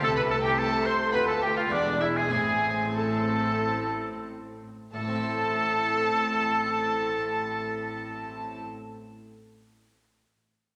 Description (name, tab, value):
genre	classical, baroque-style concerto movement with solo episodes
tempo	85-110 BPM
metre	4/4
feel	straight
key	A minor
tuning	A4 = 440 Hz
part	clear oboe	melody	0.0-8.6 s	D4 to C5	-30 LUFS	equal	none
part	rich chamber violin section	melody	0.0-8.6 s	D5 to C6	-35 LUFS	equal	none
part	warm chamber violin section	second line	0.0-8.6 s	D4 to C5	-34 LUFS	equal	none
part	dark chamber viola section	accompaniment	0.0-8.6 s	G#3 to C4	-40 LUFS	equal	none
part	harpsichord	accompaniment	0.0-8.9 s	D2 to C5	-39 LUFS	equal	none
part	rich chamber cello section	bass	0.0-8.6 s	D2 to C3	-38 LUFS	equal	none
part	rich studio double bass section	bass	0.0-8.6 s	E1 to D2	-40 LUFS	equal	none
room	wet recital hall reverb, RT60 1.7 s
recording	none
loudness	-27 LUFS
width	mono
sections	0.0-4.9 A section; 4.9-10.5 B section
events	slowing down 0.0-4.9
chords	0.0 Am/C; 1.1 Bm7b5/D; 1.7 E7; 2.3 Am